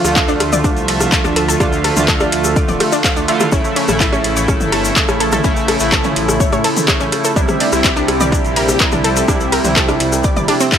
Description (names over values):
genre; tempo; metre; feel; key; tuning
melodic techno; 125 BPM; 4/4; straight; D minor; A4 = 440 Hz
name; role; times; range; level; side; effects
sweeping resonant pad; sustained chords; 0.0-10.8 s; F3 to E5; -22 LUFS; right 1 dB; chorus, sidechain pumping
sync-sweep polysynth; stabs; 0.0-10.8 s; C3 to F4; -19 LUFS; right 2 dB; chorus, sidechain pumping, tape echo
swelling detuned saw bass; bass; 0.0-10.4 s; D1 to A2; -22 LUFS; equal; tube saturation, sidechain pumping
overtone-sweeping drone; drone; 0.0-10.8 s; F3 to A3; -26 LUFS; left 1 dB; chorus, built-in reverb, phaser, sidechain pumping
deep house drum kit; drums; 0.0-10.8 s; handclaps, hi-hat, ride cymbal, rim click, toms; -18 LUFS; left 1 dB; overdrive
egg shaker; percussion; 0.0-10.8 s; none; -25 LUFS; left 4 dB; none
analog pluck; arpeggios; 0.2-10.8 s; A3 to F6; -20 LUFS; equal; chorus, sidechain pumping, tape echo
electronic kick drum; drums; 0.2-10.8 s; none; -17 LUFS; equal; overdrive
room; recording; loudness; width
digital ambience; dry, gritty hardware recording; -12 LUFS; side -8 dB against mid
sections
0.0-10.8 A section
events
none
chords
0.0 Dm; 3.5 A; 7.4 C